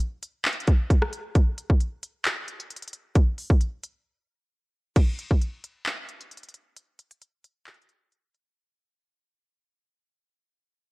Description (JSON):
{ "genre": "hip hop", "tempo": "133 BPM", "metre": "4/4", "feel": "half-time", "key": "none", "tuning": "none", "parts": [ { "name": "trap drum kit", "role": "drums", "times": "0.0-8.5 s", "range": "crash cymbal, handclaps, hi-hat, kick drum, rim click", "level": "-22 LUFS", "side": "equal", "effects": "none" } ], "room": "little or no reverb", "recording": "worn, warbling old tape, cassette tape, warbly pitch drift", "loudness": "-22 LUFS", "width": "side -26 dB against mid", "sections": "0.0-5.0 A section; 5.0-8.6 B section", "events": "break 4.1-5.0; fade-out 5.0-8.6", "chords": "none" }